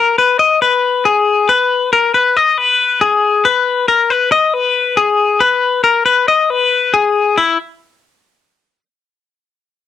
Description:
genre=rock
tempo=276 BPM (eighths)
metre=9/8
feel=straight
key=unclear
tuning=A4 = 441 Hz
part: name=clean electric guitar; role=solo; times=0.0-7.6 s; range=E4 to D#5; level=-11 LUFS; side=left 5 dB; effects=cassette tape
room=light reverb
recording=home recording on cassette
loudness=-11 LUFS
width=side -10 dB against mid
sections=0.0-7.4 A section; 7.4-9.3 B section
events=none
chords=none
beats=0.18 0.40 0.62 0.84 1.05 1.27 | 1.49 1.71 1.93 2.14 2.36 2.58 2.79 3.01 3.23 | 3.45 3.67 3.88 4.10 4.32 4.53 4.75 4.97 5.19 | 5.40 5.62 5.84 6.05 6.27 6.49 6.71 6.92 7.14 | 7.36

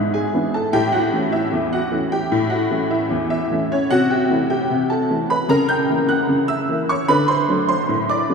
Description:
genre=ragtime piano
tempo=75 BPM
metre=2/4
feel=straight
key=unclear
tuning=A4 = 439 Hz
part: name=honky-tonk upright piano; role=solo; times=0.0-8.3 s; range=E2 to G6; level=-17 LUFS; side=equal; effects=none
room=wet cathedral reverb, RT60 6.0 s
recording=recorded in a church or concert hall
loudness=-17 LUFS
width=side -5 dB against mid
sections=0.0-8.3 A section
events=none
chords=0.0 E7/G#; 0.7 A; 3.9 Am/C; 5.5 C#dim7; 7.1 D7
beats=| 0.73 1.53 | 2.32 3.11 | 3.91 4.71 | 5.50 6.30 | 7.10 7.89

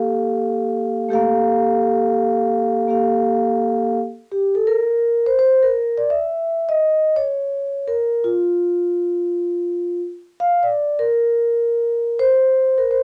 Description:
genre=hip hop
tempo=84 BPM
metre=4/4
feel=swing 65% on 16ths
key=G minor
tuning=A4 = 440 Hz
part: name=vibraphone with soft mallets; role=solo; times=0.0-13.0 s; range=A3 to F5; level=-19 LUFS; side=equal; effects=cassette tape
room=light reverb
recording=home recording on cassette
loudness=-19 LUFS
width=mono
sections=0.0-4.0 A section; 4.0-13.0 B section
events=vibraphone solo 4.0-13.0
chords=0.0 Gm9; 4.0 N.C.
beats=0.39 | 1.11 1.82 2.54 3.25 | 3.96 4.68 5.39 6.11 | 6.82 7.54 8.25 8.96 | 9.68 10.39 11.11 11.82 | 12.54

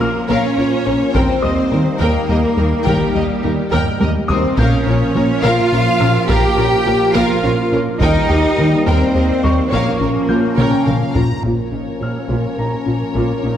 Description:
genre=cinematic, hybrid orchestral and electronic film score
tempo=70 BPM (dotted quarters)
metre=6/8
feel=straight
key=Bb dorian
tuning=A4 = 440 Hz
part: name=warm symphonic violin section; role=melody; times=0.0-11.4 s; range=Bb4 to Bb5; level=-27 LUFS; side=left 3 dB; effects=low-pass filter
part: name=rich symphonic violin section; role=second line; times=0.0-13.6 s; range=G4 to G5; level=-24 LUFS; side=left 2 dB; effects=none
part: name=rich symphonic viola section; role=accompaniment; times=0.0-13.5 s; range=Bb3 to Db5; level=-24 LUFS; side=right 1 dB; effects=low-pass filter
part: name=clear trombone section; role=sustained chords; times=0.0-11.2 s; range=F3 to Db4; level=-24 LUFS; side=right 3 dB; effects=low-pass filter
part: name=mellow French horn section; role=sustained chords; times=0.0-10.6 s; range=G3 to G4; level=-24 LUFS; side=left 3 dB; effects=none
part: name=phased analog pad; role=sustained chords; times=0.0-13.6 s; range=F3 to Bb4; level=-24 LUFS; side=right 1 dB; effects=phaser, chorus, low-pass filter
part: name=soft round pluck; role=arpeggios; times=0.0-13.6 s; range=Eb3 to Bb4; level=-26 LUFS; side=left 2 dB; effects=none
part: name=smooth gliding synth bass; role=riff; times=0.0-13.6 s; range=Eb2 to Bb3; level=-21 LUFS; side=left 2 dB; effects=low-pass filter
part: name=clear symphonic double bass section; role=bass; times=0.0-13.5 s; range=Bb1 to Eb2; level=-23 LUFS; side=right 2 dB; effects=none
part: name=rich symphonic cello section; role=bass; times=0.0-13.5 s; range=Bb2 to G4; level=-21 LUFS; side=right 2 dB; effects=none
part: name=bright baby grand piano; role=texture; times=0.0-13.6 s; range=G4 to G6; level=-28 LUFS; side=left 2 dB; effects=tape echo
part: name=taiko ensemble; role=drums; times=1.1-12.5 s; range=none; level=-22 LUFS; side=equal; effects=none
room=wet scoring stage reverb, RT60 1.5 s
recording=none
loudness=-13 LUFS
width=side -10 dB against mid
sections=0.0-11.4 A section; 11.4-13.6 B section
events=drum fill 3.7-4.6, 10.6-11.4; filter sweep 11.4-13.6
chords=0.0 Bbm; 1.1 Eb; 4.6 Bbm; 8.0 Eb; 9.7 Bbm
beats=0.29 | 1.15 2.01 | 2.86 3.72 | 4.58 5.44 | 6.29 7.15 | 8.01 8.86 | 9.72 10.58 | 11.44 12.29 | 13.15

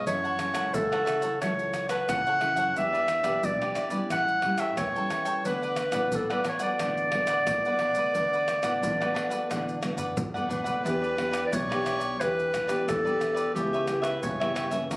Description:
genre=samba and choro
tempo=89 BPM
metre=4/4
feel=straight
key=unclear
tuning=A4 = 440 Hz
part: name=clear clarinet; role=melody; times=0.0-14.9 s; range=G4 to F#5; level=-27 LUFS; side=equal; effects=none
part: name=cavaquinho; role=accompaniment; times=0.0-15.0 s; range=D4 to G5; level=-32 LUFS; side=equal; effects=none
part: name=nylon-string guitar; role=accompaniment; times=0.0-15.0 s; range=F#2 to A4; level=-34 LUFS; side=equal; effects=none
part: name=upright bass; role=bass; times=0.0-15.0 s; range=A1 to G2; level=-40 LUFS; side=equal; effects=none
part: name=maracas, surdo, pandeiro and tamborim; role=percussion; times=0.1-15.0 s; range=none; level=-35 LUFS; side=equal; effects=none
room=moderate studio ambience, RT60 0.4 s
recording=recorded on a phone in the room, club reverb, compression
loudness=-25 LUFS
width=side -23 dB against mid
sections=0.0-10.9 A section; 10.9-15.0 B section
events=drum fill 9.8-10.9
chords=0.1 F#m7; 2.8 Em7; 4.1 A7; 5.5 D6; 10.9 Em7; 13.6 C#m7b5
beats=| 0.07 0.74 1.42 2.09 | 2.76 3.44 4.11 4.79 | 5.46 6.13 6.81 7.48 | 8.16 8.83 9.51 10.18 | 10.86 11.53 12.21 12.88 | 13.55 14.23 14.90

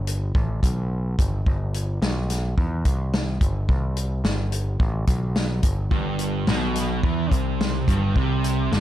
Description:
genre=indie rock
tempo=108 BPM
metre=4/4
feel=straight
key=G major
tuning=A4 = 439 Hz
part: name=growling picked electric bass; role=bass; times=0.0-8.8 s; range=G1 to E2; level=-24 LUFS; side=equal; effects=overdrive
part: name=vintage drum kit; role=drums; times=0.1-8.8 s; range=hi-hat, kick drum, snare drum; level=-24 LUFS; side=equal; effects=none
part: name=fuzz guitar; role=riff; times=5.9-8.8 s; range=G2 to E3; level=-24 LUFS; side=right 2 dB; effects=distortion
room=little or no reverb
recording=dark, warm production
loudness=-21 LUFS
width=side -12 dB against mid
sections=0.0-8.8 A section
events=none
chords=0.0 G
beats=0.35 0.91 | 1.46 2.02 2.58 3.14 | 3.69 4.25 4.81 5.37 | 5.92 6.48 7.04 7.60 | 8.16 8.72

